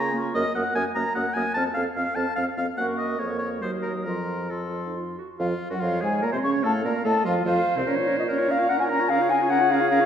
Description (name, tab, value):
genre	quick classical-period movement for wind quintet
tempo	147 BPM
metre	3/4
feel	rubato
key	Bb minor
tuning	A4 = 441 Hz
part	mellow concert flute	melody	0.0-10.1 s	C5 to F6	-26 LUFS	left 2 dB	none
part	clear oboe	second line	0.0-10.1 s	C4 to Bb5	-29 LUFS	left 1 dB	none
part	bright clarinet	accompaniment	0.0-10.1 s	Eb4 to F5	-33 LUFS	right 4 dB	none
part	dark French horn	accompaniment	0.0-10.1 s	C3 to F4	-28 LUFS	right 2 dB	none
part	warm bassoon	bass	0.0-10.1 s	C2 to Db3	-30 LUFS	right 1 dB	none
room	wet recital hall reverb, RT60 1.6 s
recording	heard from further back in the room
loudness	-22 LUFS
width	side -8 dB against mid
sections	0.0-5.4 A section; 5.4-10.1 B section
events	none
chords	0.3 Ebm/Gb; 1.6 F; 2.8 Gb; 3.6 Ebm; 4.1 F; 5.4 Bbm/F; 6.6 F7/A; 7.9 Bbm; 9.1 Bbm/Db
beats	| 0.35 0.75 1.16 | 1.56 1.97 2.38 | 2.79 3.20 3.62 | 4.06 4.51 4.96 | 5.40 5.82 6.23 | 6.64 7.05 7.47 | 7.87 8.28 8.69 | 9.09 9.50 9.90